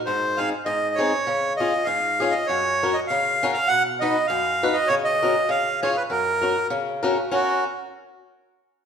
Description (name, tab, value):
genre	alpine folk, alpine dance band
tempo	100 BPM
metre	2/4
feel	swing 54% on 8ths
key	F# major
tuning	A4 = 440 Hz
part	accordion	melody	0.1-7.6 s	F#4 to F#5	-22 LUFS	right 2 dB	none
part	picked swing-style acoustic guitar	accompaniment	0.1-7.6 s	F#2 to B4	-24 LUFS	left 2 dB	none
room	wet stone room reverb, RT60 1.4 s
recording	band playing live in one room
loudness	-20 LUFS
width	side -7 dB against mid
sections	0.0-7.3 A section; 7.3-8.5 B section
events	none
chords	0.1 G#; 1.3 C#; 2.5 F#; 3.7 B; 4.9 F#/C#; 5.5 C#; 6.1 F#